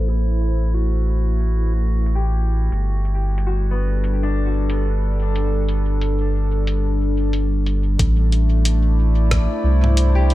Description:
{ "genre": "ambient dub", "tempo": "91 BPM", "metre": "4/4", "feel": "swing 59% on 16ths", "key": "A dorian", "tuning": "A4 = 440 Hz", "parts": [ { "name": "warm clarinet", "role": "melody", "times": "0.0-2.4 s", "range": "E4 to A4", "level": "-35 LUFS", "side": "right 2 dB", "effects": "tape echo" }, { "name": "warbly tape-like pad", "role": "sustained chords", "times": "0.0-10.3 s", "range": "G3 to C5", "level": "-26 LUFS", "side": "equal", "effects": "chorus, built-in reverb" }, { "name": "concert harp", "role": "arpeggios", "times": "0.0-10.3 s", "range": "B3 to G4", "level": "-31 LUFS", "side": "left 3 dB", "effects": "low-pass filter, tape echo" }, { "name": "warm sub bass", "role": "bass", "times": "0.0-10.3 s", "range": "G1 to C2", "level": "-18 LUFS", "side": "equal", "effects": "tube saturation" }, { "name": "lo-fi sampler-style drum kit", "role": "drums", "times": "0.1-10.3 s", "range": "hi-hat, rim click, toms", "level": "-28 LUFS", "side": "equal", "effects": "low-pass filter on hats, low-pass filter on snare, low-pass filter on toms" }, { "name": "electronic kick drum", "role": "drums", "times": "8.0-9.5 s", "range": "none", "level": "-22 LUFS", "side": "equal", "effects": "none" }, { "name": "drifting glass-harmonics texture", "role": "texture", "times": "8.4-10.3 s", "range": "D4 to D5", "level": "-30 LUFS", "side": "left 2 dB", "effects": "chorus, built-in reverb" } ], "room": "digital ambience", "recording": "low-pass filter", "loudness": "-17 LUFS", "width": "side -16 dB against mid", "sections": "0.0-8.0 A section; 8.0-10.3 B section", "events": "filter sweep on harp 0.0-8.0; filter sweep 0.0-8.0", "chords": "0.0 Am7; 2.7 Gmaj7; 8.0 Am", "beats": "| 0.08 0.74 1.40 2.06 | 2.72 3.38 4.04 4.70 | 5.36 6.02 6.68 7.34 | 8.00 8.66 9.31 9.97" }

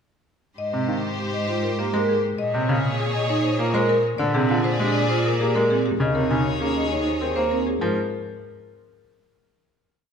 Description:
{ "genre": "classical, minimalist pattern music", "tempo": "199 BPM", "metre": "6/4", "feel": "straight", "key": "Ab major", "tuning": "A4 = 439 Hz", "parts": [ { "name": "marimba with hard mallets", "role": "melody", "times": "0.6-8.0 s", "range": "G4 to Ab5", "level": "-27 LUFS", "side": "left 8 dB", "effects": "none" }, { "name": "clear studio violin section", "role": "sustained chords", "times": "0.6-7.6 s", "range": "G4 to D5", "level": "-29 LUFS", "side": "left 3 dB", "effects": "none" }, { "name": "clear cello", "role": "bass", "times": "0.6-8.0 s", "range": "Eb2 to Bb2", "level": "-28 LUFS", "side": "right 2 dB", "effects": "none" }, { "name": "bright concert grand piano", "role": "accompaniment", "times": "0.7-8.0 s", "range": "C3 to C4", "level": "-26 LUFS", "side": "left 1 dB", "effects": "none" }, { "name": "vibraphone with medium mallets", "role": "arpeggios", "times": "0.7-8.0 s", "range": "C4 to C5", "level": "-25 LUFS", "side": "right 5 dB", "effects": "none" } ], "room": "wet recital hall reverb, RT60 1.6 s", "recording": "none", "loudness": "-20 LUFS", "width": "side -7 dB against mid", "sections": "0.6-7.8 A section; 7.8-9.6 final chord", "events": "none", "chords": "0.6 Abmaj9; 2.4 Bbm9; 4.2 Bb9; 6.0 Eb7sus4; 7.8 N.C.", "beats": "| 0.58 0.88 1.18 1.49 1.79 2.09 | 2.39 2.69 2.99 3.29 3.60 3.90 | 4.20 4.50 4.80 5.10 5.41 5.71 | 6.01 6.31 6.61 6.91 7.21 7.52 | 7.82" }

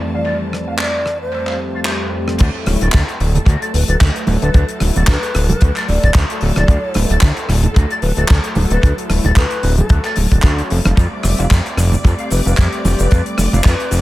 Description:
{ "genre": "nu-disco, nu disco", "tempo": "112 BPM", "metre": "4/4", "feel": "swing 56% on 16ths", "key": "D major", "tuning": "A4 = 440 Hz", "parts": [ { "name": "warm analog pad", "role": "accompaniment", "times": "0.0-13.7 s", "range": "F2 to E5", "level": "-24 LUFS", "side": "equal", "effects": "wide subtle chorus, sidechain pumping, dub echo" }, { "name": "clear studio string section", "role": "sustained chords", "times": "0.0-14.0 s", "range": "E3 to D6", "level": "-31 LUFS", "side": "equal", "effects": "sidechain pumping" }, { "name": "mellow hollow concert flute", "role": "melody", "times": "0.1-14.0 s", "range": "A4 to D5", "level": "-25 LUFS", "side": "left 1 dB", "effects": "tape echo" }, { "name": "electric guitar with an envelope filter", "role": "riff", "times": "0.1-13.8 s", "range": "F3 to F5", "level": "-26 LUFS", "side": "left 2 dB", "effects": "ensemble chorus, dub echo" }, { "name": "damped 70s drum kit", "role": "drums", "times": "0.5-14.0 s", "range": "crash cymbal, handclaps, hi-hat, rim click, shaker", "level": "-22 LUFS", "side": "left 1 dB", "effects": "dub echo" }, { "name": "fat analog bass", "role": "bass", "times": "2.4-14.0 s", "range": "D1 to F2", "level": "-15 LUFS", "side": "equal", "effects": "tube saturation" }, { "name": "kick drum", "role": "drums", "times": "2.4-13.8 s", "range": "none", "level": "-12 LUFS", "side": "equal", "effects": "none" }, { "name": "congas", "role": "percussion", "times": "2.7-13.6 s", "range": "none", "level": "-22 LUFS", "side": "right 2 dB", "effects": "dub echo" } ], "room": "little or no reverb", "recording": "echo-heavy mix", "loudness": "-13 LUFS", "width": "side -17 dB against mid", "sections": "0.0-2.4 A section; 2.4-14.0 B section", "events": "filter sweep on clean electric guitar 0.0-2.4; drop 2.4-14.0", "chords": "0.0 Fmaj7; 2.4 Dmaj7; 10.7 Fmaj7", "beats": "| 0.26 0.79 1.33 1.87 | 2.40 2.94 3.47 4.01 | 4.54 5.08 5.62 6.15 | 6.69 7.22 7.76 8.29 | 8.83 9.37 9.90 10.44 | 10.97 11.51 12.04 12.58 | 13.12 13.65" }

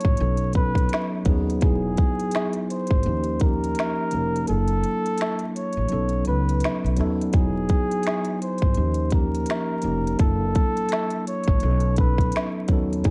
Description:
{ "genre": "lo-fi hip hop", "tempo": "84 BPM", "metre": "4/4", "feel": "swing 59% on 16ths", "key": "unclear", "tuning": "A4 = 439 Hz", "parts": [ { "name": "breathy flugelhorn", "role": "melody", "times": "0.0-13.1 s", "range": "G#4 to C#5", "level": "-31 LUFS", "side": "equal", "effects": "none" }, { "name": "mellow tine electric piano", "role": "accompaniment", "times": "0.0-13.1 s", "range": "F3 to B4", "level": "-28 LUFS", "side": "equal", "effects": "none" }, { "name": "organic electronic drum kit", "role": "drums", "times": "0.0-13.1 s", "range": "finger snaps, hi-hat, kick drum, snare drum", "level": "-26 LUFS", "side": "equal", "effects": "none" }, { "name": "upright bass", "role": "bass", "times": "0.1-13.1 s", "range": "E1 to D#2", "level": "-28 LUFS", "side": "equal", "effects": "none" } ], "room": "light reverb", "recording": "vinyl crackle, nothing above 10.8 kHz", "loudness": "-23 LUFS", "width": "mono", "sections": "0.0-13.1 A section", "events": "kick muted 4.5-7.3", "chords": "0.2 B7; 1.6 Emaj7; 3.0 D#7; 4.5 F#7alt; 5.9 B7; 7.3 Emaj7; 8.8 D#7; 10.2 F#7alt; 11.6 B7", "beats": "0.19 0.91 | 1.62 2.34 3.05 3.76 | 4.48 5.19 5.91 6.62 | 7.34 8.05 8.76 9.48 | 10.19 10.91 11.62 12.34 | 13.05" }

